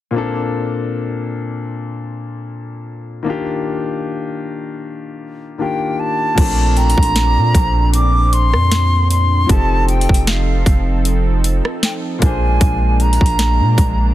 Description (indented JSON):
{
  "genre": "contemporary R&B",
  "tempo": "77 BPM",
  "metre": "4/4",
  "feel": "swing 54% on 16ths",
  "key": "Bb major",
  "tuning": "A4 = 440 Hz",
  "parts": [
    { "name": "clear concert grand piano", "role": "accompaniment", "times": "0.1-14.1 s", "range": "Bb2 to C5", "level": "-23 LUFS", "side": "left 4 dB", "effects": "none" },
    { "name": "concert flute", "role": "melody", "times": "5.6-14.1 s", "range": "F5 to D6", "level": "-20 LUFS", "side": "equal", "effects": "tape echo" },
    { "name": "warm analog pad", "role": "sustained chords", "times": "6.4-14.1 s", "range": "Bb2 to A4", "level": "-24 LUFS", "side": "right 2 dB", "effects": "chorus" },
    { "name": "long sustained 808-style bass", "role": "bass", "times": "6.4-14.1 s", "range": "F1 to Bb2", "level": "-15 LUFS", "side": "equal", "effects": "none" },
    { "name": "trap drum kit", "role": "drums", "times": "6.4-14.0 s", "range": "crash cymbal, hi-hat, kick drum, rim click, snare drum", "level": "-16 LUFS", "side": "equal", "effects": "overdrive" },
    { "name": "celesta", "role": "texture", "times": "6.8-10.0 s", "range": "G5 to D6", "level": "-34 LUFS", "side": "right 3 dB", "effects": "none" }
  ],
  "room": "little or no reverb",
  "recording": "dense, heavily limited modern master",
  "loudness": "-14 LUFS",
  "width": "side -14 dB against mid",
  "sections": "0.1-6.4 A section; 6.4-14.1 B section",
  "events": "none",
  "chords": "0.1 Bbmaj7; 3.3 Ebmaj7; 6.4 Bbmaj9; 9.5 F7; 12.2 Bb7",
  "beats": "| 0.14 0.92 1.70 2.48 | 3.26 4.04 4.82 5.60 | 6.38 7.16 7.93 8.71 | 9.49 10.27 11.05 11.83 | 12.61 13.39"
}